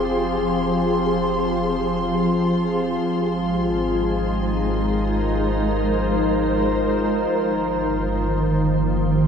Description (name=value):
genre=ambient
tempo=free time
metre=none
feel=none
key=unclear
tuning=A4 = 440 Hz
part: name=glassy FM pad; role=sustained chords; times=0.0-9.3 s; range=Eb3 to C5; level=-21 LUFS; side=equal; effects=ensemble chorus, built-in reverb
part: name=warm sub bass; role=bass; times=0.0-9.3 s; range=F1 to Ab1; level=-28 LUFS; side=equal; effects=none
part: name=organ-like drone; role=drone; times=0.0-9.3 s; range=F3 to F4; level=-26 LUFS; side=left 1 dB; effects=ensemble chorus, built-in reverb
part: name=dark studio violin section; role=texture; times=0.0-9.3 s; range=C5 to C6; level=-31 LUFS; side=left 1 dB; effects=none
room=wet cathedral reverb, RT60 5.2 s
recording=dark, warm production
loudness=-19 LUFS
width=side -7 dB against mid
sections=0.0-9.3 A section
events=fade-in on sub bass 0.0-9.3; fade-out on violin section 0.0-9.3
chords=0.0 Fm; 3.0 Abmaj7; 7.3 Eb6/G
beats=free time